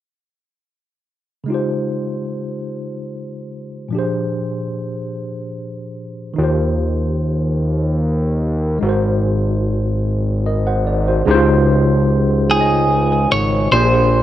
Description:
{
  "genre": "slow six-eight R&B",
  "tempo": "49 BPM (dotted quarters)",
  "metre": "6/8",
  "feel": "straight",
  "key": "unclear",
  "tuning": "A4 = 440 Hz",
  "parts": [
    { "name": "tine electric piano", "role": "accompaniment", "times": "1.4-14.2 s", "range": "Bb2 to G5", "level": "-19 LUFS", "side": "equal", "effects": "overdrive, fast stereo tremolo" },
    { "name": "fat analog bass", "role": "bass", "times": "6.4-14.2 s", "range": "Ab1 to Eb2", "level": "-17 LUFS", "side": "equal", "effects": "none" },
    { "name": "clean electric guitar", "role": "melody", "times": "12.5-14.2 s", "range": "Ab4 to Db5", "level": "-16 LUFS", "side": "right 1 dB", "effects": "none" }
  ],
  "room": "little or no reverb",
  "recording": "none",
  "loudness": "-15 LUFS",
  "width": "side -12 dB against mid",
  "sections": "1.5-11.3 A section; 11.3-14.2 B section",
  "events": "none",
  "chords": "1.5 Dbmaj9#11; 3.9 Bb13; 6.4 Eb69; 8.8 Ab7; 11.3 Dbmaj9#11; 13.7 Bb13",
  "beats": "| 1.47 2.70 | 3.92 5.15 | 6.37 7.60 | 8.82 10.04 | 11.27 12.49 | 13.72"
}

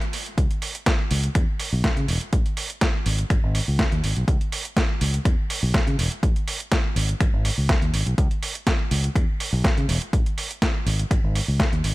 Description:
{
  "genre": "filtered disco house",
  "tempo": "123 BPM",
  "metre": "4/4",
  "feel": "straight",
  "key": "unclear",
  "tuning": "A4 = 439 Hz",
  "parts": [
    { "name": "dusty soul sampler-style drum kit", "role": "drums", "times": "0.0-11.9 s", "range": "finger snaps, hi-hat, snare drum", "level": "-27 LUFS", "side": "right 1 dB", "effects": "overdrive, sidechain pumping on hats" },
    { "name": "fingered electric bass", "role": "bass", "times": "0.4-11.9 s", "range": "E1 to C#3", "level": "-24 LUFS", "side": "equal", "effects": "sidechain pumping, low-pass filter" },
    { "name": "electronic kick drum", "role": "drums", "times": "0.4-11.7 s", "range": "none", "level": "-22 LUFS", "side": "equal", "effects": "overdrive" }
  ],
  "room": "digital ambience",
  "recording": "none",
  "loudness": "-20 LUFS",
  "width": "side -20 dB against mid",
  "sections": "0.0-11.9 A section",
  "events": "none",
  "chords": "none",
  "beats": "| 0.38 0.87 1.35 1.84 | 2.33 2.82 3.31 3.79 | 4.28 4.77 5.26 5.74 | 6.23 6.72 7.21 7.70 | 8.18 8.67 9.16 9.65 | 10.13 10.62 11.11 11.60"
}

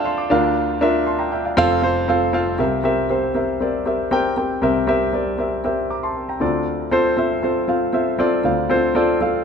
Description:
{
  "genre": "pop",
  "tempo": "118 BPM",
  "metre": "4/4",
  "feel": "straight",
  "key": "unclear",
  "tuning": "A4 = 440 Hz",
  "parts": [
    { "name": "warm concert grand piano", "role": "solo", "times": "0.0-9.4 s", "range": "F1 to D6", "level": "-17 LUFS", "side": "equal", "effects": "tape echo" }
  ],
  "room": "moderate large studio reverb, RT60 0.9 s",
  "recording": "none",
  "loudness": "-17 LUFS",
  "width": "side -6 dB against mid",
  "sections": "0.0-2.6 A section; 2.6-9.4 B section",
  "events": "grand piano fill 9.2",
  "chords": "0.3 Bb/D; 1.6 F; 2.6 C7; 6.4 Dm7",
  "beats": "0.05 | 0.56 1.07 1.58 2.09 | 2.60 3.10 3.61 4.12 | 4.63 5.14 5.65 6.16 | 6.67 7.18 7.69 8.20 | 8.71 9.21"
}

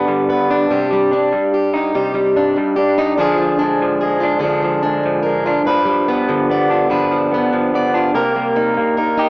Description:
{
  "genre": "acoustic folk duo or small band",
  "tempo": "48 BPM (dotted quarters)",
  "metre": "6/8",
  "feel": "straight",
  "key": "C minor",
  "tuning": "A4 = 440 Hz",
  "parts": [
    { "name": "fingerpicked plugged-in steel-string acoustic guitar", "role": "accompaniment", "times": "0.0-9.3 s", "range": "G2 to D5", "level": "-17 LUFS", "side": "equal", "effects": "cassette tape" },
    { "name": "electric guitar through a small old amp", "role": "arpeggios", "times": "0.0-9.3 s", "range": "F3 to G4", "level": "-16 LUFS", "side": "equal", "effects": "harmonic tremolo, cassette tape" }
  ],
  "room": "moderate spring reverb, RT60 1.4 s, studio reverb",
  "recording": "home recording on cassette, small speaker sound",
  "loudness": "-14 LUFS",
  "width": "side -25 dB against mid",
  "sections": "0.0-9.3 A section",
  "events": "none",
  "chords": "0.0 G; 0.7 Cmadd9; 3.2 Ddim; 5.7 G7; 8.2 Cm7",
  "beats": "| 0.71 1.95 | 3.19 4.43 | 5.67 6.91 | 8.15"
}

